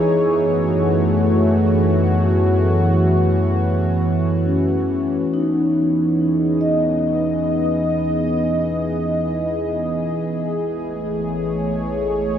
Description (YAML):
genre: ambient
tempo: free time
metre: none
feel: none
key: E major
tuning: A4 = 440 Hz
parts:
  - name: warm analog pad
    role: sustained chords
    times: 0.0-12.4 s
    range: E3 to D#5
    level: -19 LUFS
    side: right 1 dB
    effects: chorus, shimmer reverb
  - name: vibraphone with soft mallets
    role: arpeggios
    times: 0.0-10.5 s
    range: C#4 to D#5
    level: -22 LUFS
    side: left 1 dB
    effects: diffuse ambient delay, shimmer reverb
  - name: warm sub bass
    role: bass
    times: 0.0-12.4 s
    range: A1 to F#2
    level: -23 LUFS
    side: equal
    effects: none
  - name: analog drone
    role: drone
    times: 0.0-5.4 s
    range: E3 to B3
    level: -29 LUFS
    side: left 1 dB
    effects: chorus
room: wet lush hall reverb, RT60 3.2 s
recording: none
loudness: -16 LUFS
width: side -9 dB against mid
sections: 0.0-5.3 A section; 5.3-12.4 B section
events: fade-in on sub bass 5.3-12.4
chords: 0.1 F#m7; 5.3 Emaj7; 10.5 Amaj7